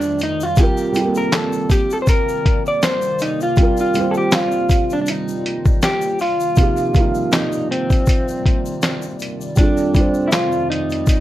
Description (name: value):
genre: lo-fi hip hop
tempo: 80 BPM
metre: 4/4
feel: swing 56% on 16ths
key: C dorian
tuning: A4 = 439 Hz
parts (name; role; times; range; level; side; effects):
- electric guitar through a small old amp; melody; 0.0-11.2 s; C4 to D5; -20 LUFS; equal; low-pass filter
- felt-muted upright piano; accompaniment; 0.0-11.2 s; C3 to C5; -22 LUFS; right 3 dB; cassette tape, low-pass filter
- hollow soft pad; sustained chords; 0.0-11.2 s; F2 to D5; -28 LUFS; left 1 dB; chorus, low-pass filter
- egg shaker; percussion; 0.0-11.2 s; none; -38 LUFS; left 8 dB; none
- lo-fi sampler-style drum kit; drums; 0.2-11.2 s; handclaps, hi-hat, kick drum, snare drum; -17 LUFS; equal; none
room: little or no reverb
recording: cassette tape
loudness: -15 LUFS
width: side -14 dB against mid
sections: 0.0-6.6 A section; 6.6-11.2 B section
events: none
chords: 0.0 F13; 0.6 Cm9; 3.6 Cm11; 9.6 F13